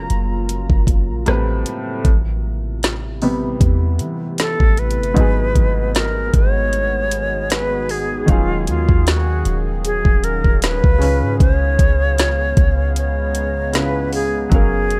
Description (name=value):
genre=contemporary R&B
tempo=77 BPM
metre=4/4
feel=swing 54% on 16ths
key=G# dorian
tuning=A4 = 439 Hz
part: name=hollow concert flute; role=melody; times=0.0-15.0 s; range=E#4 to A#5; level=-24 LUFS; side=equal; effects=tape echo
part: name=clear baby grand piano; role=accompaniment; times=0.0-15.0 s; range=G#2 to E#5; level=-27 LUFS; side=equal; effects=none
part: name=deep dark ambient pad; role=sustained chords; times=0.0-15.0 s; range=C3 to A#5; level=-30 LUFS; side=equal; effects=chorus, built-in reverb
part: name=clean 808-style bass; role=bass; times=0.0-15.0 s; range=D#1 to E3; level=-22 LUFS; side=equal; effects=none
part: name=smooth R&B drum kit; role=drums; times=0.1-15.0 s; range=hi-hat, kick drum, rim click, snare drum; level=-18 LUFS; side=equal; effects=none
room=digital ambience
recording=dark, warm production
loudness=-17 LUFS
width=mono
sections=0.0-2.0 A section; 2.0-5.2 B section; 5.2-15.0 C section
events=grand piano solo 2.0-5.2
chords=0.0 F#maj7; 1.3 Am9; 5.2 G#m7; 8.3 D#m11; 11.0 C#7